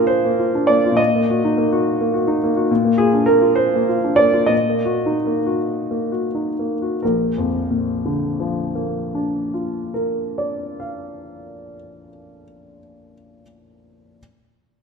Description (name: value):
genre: classical, romantic character piece for solo piano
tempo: 40-72 BPM (dotted quarters)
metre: 6/8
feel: rubato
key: Bb major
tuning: A4 = 435 Hz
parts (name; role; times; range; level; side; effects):
- clear baby grand piano; solo; 0.0-14.2 s; Bb1 to F5; -17 LUFS; equal; none
room: moderate scoring stage reverb, RT60 1.7 s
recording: none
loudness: -17 LUFS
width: side -5 dB against mid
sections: 0.0-7.0 A section; 7.0-11.9 B section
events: slowing down 1.9-7.0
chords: 0.0 Bb; 1.0 Ebm/Bb; 2.7 Bb; 4.5 Ebm/Bb; 7.0 Bb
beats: 0.09 | 0.99 1.85 | 2.70 3.57 | 4.51 5.65 | 7.01 8.26 | 9.49 10.72